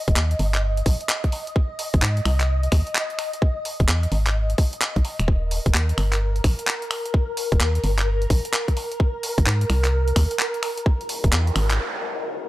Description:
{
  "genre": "UK garage, two-step garage",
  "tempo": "129 BPM",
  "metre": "4/4",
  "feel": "swing 64% on 16ths",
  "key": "Eb major",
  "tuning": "A4 = 442 Hz",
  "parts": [
    { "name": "soft string machine", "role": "sustained chords", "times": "0.0-12.5 s", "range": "Bb4 to Eb5", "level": "-30 LUFS", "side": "left 1 dB", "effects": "phaser, ensemble chorus, sidechain pumping" },
    { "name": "organ-like FM bass", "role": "bass", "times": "0.1-11.8 s", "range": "Eb1 to Ab2", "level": "-21 LUFS", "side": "equal", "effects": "tube saturation" },
    { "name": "breakbeat sampler-style drum kit", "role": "drums", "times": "0.1-11.8 s", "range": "finger snaps, handclaps, hi-hat", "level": "-26 LUFS", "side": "equal", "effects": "small room reverb" },
    { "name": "electronic kick drum", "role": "drums", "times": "0.1-11.3 s", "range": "none", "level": "-19 LUFS", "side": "equal", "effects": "small room reverb" },
    { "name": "noise sweep", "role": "sound effects", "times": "11.1-12.5 s", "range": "none", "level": "-30 LUFS", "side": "right 1 dB", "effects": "none" }
  ],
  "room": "digital ambience",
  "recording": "dry, gritty hardware recording",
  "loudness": "-20 LUFS",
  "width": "side -16 dB against mid",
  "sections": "0.0-12.5 A section",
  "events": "noise sweep 11.1-12.5; break 11.8-12.5",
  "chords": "0.0 Eb; 1.6 Ab; 3.2 Emaj7 (rootless); 5.3 Eb; 9.0 Abadd9; 10.6 E",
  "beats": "0.16 0.63 1.09 | 1.56 2.02 2.49 2.95 | 3.42 3.88 4.35 4.81 | 5.28 5.75 6.21 6.67 | 7.14 7.61 8.07 8.54 | 9.00 9.47 9.93 10.40 | 10.86 11.33 11.79 12.26"
}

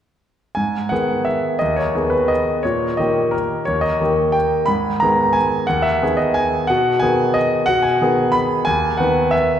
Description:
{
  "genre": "classical, piano waltz",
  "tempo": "178 BPM",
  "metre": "3/4",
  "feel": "uneven beats, rubato",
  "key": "G# minor",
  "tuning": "A4 = 440 Hz",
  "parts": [
    { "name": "bright grand piano", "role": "solo", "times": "0.5-9.6 s", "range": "D#2 to B5", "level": "-15 LUFS", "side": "equal", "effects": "none" }
  ],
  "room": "wet concert hall reverb, RT60 2.6 s",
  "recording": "recorded in a church or concert hall",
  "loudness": "-16 LUFS",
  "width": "side -9 dB against mid",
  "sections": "0.6-9.6 A section",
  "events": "none",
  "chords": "0.6 G#m; 2.6 D#7/A#; 4.7 G#m; 6.7 G#m/B; 8.7 B/D#",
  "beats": "| 0.57 0.91 1.27 | 1.61 1.95 2.30 | 2.65 2.98 3.33 | 3.67 4.00 4.35 | 4.68 5.01 5.36 | 5.69 6.02 6.37 | 6.70 7.03 7.36 | 7.68 8.01 8.34 | 8.67 8.99 9.33"
}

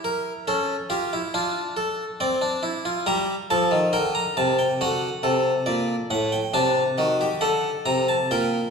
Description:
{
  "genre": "classical, baroque-style 3-part fugue for harpsichord",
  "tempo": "69 BPM",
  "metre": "4/4",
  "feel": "straight",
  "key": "unclear",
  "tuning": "A4 = 440 Hz",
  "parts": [
    { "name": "harpsichord", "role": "solo", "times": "0.0-8.7 s", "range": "A2 to Bb5", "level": "-21 LUFS", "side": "equal", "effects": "none" }
  ],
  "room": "wet recital hall reverb, RT60 1.5 s",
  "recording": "heard from further back in the room",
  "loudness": "-21 LUFS",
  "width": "side -5 dB against mid",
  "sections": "0.0-8.7 A section",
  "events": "none",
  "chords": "0.0 A7/E; 1.3 Dm; 3.1 Gm; 4.8 D; 6.6 D7/C",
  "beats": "0.48 1.34 2.20 | 3.07 3.94 4.81 5.68 | 6.55 7.44 8.32"
}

